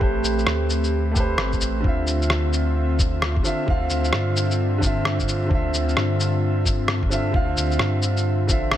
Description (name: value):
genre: future garage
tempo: 131 BPM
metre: 4/4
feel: swing 63% on 16ths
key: unclear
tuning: A4 = 445 Hz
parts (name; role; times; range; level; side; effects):
- clear upright piano; accompaniment; 0.0-8.8 s; D3 to F5; -26 LUFS; right 2 dB; sidechain pumping, digital delay
- airy breathy pad; sustained chords; 0.0-8.8 s; D3 to E5; -27 LUFS; left 1 dB; chorus, sidechain pumping
- warm sub bass; bass; 0.0-8.8 s; G1 to G2; -23 LUFS; equal; sidechain pumping
- electronic kick drum; drums; 0.0-8.6 s; none; -23 LUFS; equal; none
- electronic shaker and rim click; drums; 0.2-8.8 s; none; -25 LUFS; left 1 dB; none
room: light reverb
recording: none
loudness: -19 LUFS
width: side -12 dB against mid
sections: 0.0-8.8 A section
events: none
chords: 0.0 Am9; 1.8 Dm9